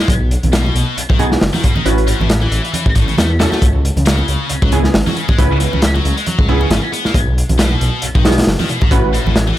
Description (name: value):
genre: breakbeat, breaks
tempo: 136 BPM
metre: 4/4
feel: swing 56% on 16ths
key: C# minor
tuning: A4 = 439 Hz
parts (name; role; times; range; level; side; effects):
- heavy high-gain guitar; riff; 0.0-9.6 s; G#2 to B3; -21 LUFS; left 2 dB; distortion, tube saturation, digital delay
- orchestra-hit-like synth stab; stabs; 0.0-9.6 s; B3 to B4; -21 LUFS; right 3 dB; built-in reverb, digital delay
- dark detuned saw bass; bass; 0.1-9.5 s; F#1 to E2; -16 LUFS; equal; none
- crunchy breakbeat drum kit; drums; 0.1-9.5 s; hi-hat, kick drum, snare drum; -15 LUFS; equal; none
- congas; percussion; 0.4-9.6 s; none; -24 LUFS; right 2 dB; none
room: small room ambience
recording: none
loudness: -12 LUFS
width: side -14 dB against mid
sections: 0.0-9.6 A section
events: none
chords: 0.1 B6; 1.9 A6; 3.6 C#m7; 7.1 B6; 8.9 A6